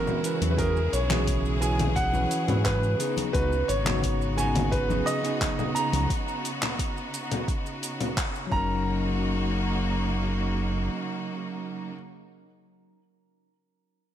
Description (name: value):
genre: sunset chillout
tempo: 87 BPM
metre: 4/4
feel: straight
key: F# mixolydian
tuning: A4 = 440 Hz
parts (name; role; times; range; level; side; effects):
- clear concert grand piano; melody; 0.0-11.9 s; A#4 to A#5; -30 LUFS; right 1 dB; tape echo
- bell-like tine electric piano; accompaniment; 0.0-12.0 s; C#3 to B4; -30 LUFS; moving between left 5 dB and right 6 dB; auto-pan, tape echo
- bright studio string section; sustained chords; 0.0-11.9 s; C#3 to G#4; -33 LUFS; equal; none
- deep house drum kit; drums; 0.1-8.5 s; congas, handclaps, hi-hat, shaker; -31 LUFS; left 2 dB; overdrive
- round analog bass; bass; 0.4-10.9 s; F#1 to G#2; -28 LUFS; equal; tube saturation
- congas; percussion; 0.4-6.1 s; none; -35 LUFS; left 4 dB; none
- electronic kick drum; drums; 0.6-8.7 s; none; -30 LUFS; equal; overdrive
room: light reverb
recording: none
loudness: -24 LUFS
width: side -10 dB against mid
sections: 0.0-8.9 A section; 8.9-11.6 B section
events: band accent 8.2-8.5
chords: 0.0 E69; 3.0 C#9sus4; 8.5 F#6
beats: | 0.58 1.27 1.96 2.65 | 3.34 4.03 4.72 5.41 | 6.10 6.79 7.48 8.17 | 8.86 9.55 10.24 10.93